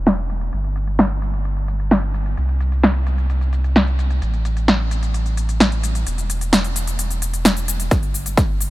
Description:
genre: EDM, festival progressive house.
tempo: 130 BPM.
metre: 4/4.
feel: straight.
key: unclear.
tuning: A4 = 440 Hz.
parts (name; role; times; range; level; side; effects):
saturated sub bass; bass; 0.0-8.7 s; E1 to C2; -20 LUFS; equal; sidechain pumping.
big-room dance drum kit; drums; 0.1-8.7 s; hi-hat, shaker, snare drum; -20 LUFS; equal; overdrive.
electronic kick drum; drums; 7.9-8.5 s; none; -17 LUFS; equal; overdrive.
room: digital ambience.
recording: low-pass filter.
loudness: -17 LUFS.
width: side -17 dB against mid.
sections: 0.0-7.9 A section.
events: filter sweep 0.0-7.9; drum fill 7.9-8.7.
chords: none.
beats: 0.07 | 0.53 0.99 1.45 1.91 | 2.37 2.84 3.30 3.76 | 4.22 4.68 5.14 5.61 | 6.07 6.53 6.99 7.45 | 7.91 8.37.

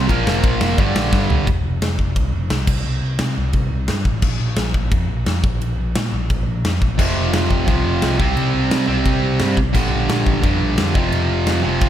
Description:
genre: punk rock.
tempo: 174 BPM.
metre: 4/4.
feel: straight.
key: unclear.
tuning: A4 = 440 Hz.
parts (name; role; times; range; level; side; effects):
distorted electric guitar; riff; 0.0-1.5, 7.0-11.9 s; F2 to C4; -19 LUFS; right 2 dB; overdrive.
overdriven picked electric bass; bass; 0.0-11.9 s; F1 to C3; -21 LUFS; equal; none.
big rock drum kit; drums; 0.1-11.9 s; crash cymbal, kick drum, ride cymbal, snare drum, toms; -20 LUFS; equal; none.
room: little or no reverb.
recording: none.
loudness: -16 LUFS.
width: side -11 dB against mid.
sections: 0.0-1.5 A section; 1.5-11.9 B section.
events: drum fill 1.1-1.5; half time 1.5-11.9.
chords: 0.1 Bb5; 0.8 Gm; 1.5 F5; 2.7 C5; 4.2 Bb5; 7.0 F5; 8.2 C5; 9.7 Gm/Bb; 11.0 F5.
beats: | 0.09 0.43 0.78 1.12 | 1.47 1.81 2.16 2.50 | 2.85 3.19 3.54 3.88 | 4.23 4.57 4.92 5.26 | 5.61 5.95 6.30 6.64 | 6.99 7.33 7.68 8.02 | 8.37 8.71 9.06 9.40 | 9.75 10.09 10.44 10.78 | 11.13 11.47 11.82.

